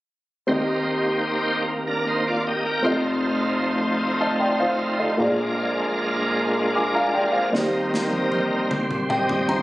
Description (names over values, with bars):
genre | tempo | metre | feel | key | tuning
slow gospel | 51 BPM (dotted quarters) | 6/8 | straight | Eb major | A4 = 440 Hz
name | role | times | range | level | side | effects
warm upright piano | accompaniment | 0.5-9.6 s | F1 to D6 | -23 LUFS | equal | none
bright tonewheel organ | sustained chords | 0.5-9.6 s | Gb3 to G5 | -23 LUFS | right 1 dB | slow rotary speaker, overdrive, chorus vibrato
crisp fusion drum kit | drums | 7.5-9.6 s | snare drum, toms | -28 LUFS | equal | none
room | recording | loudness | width
light reverb, studio reverb | recorded on a phone in the room, nothing above 10.4 kHz | -20 LUFS | side -17 dB against mid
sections
0.5-9.6 A section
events
drum fill 7.5-9.6; upright piano fill 8.7-9.6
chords
0.5 Eb6; 2.8 F7; 5.2 Bb7; 7.5 Eb6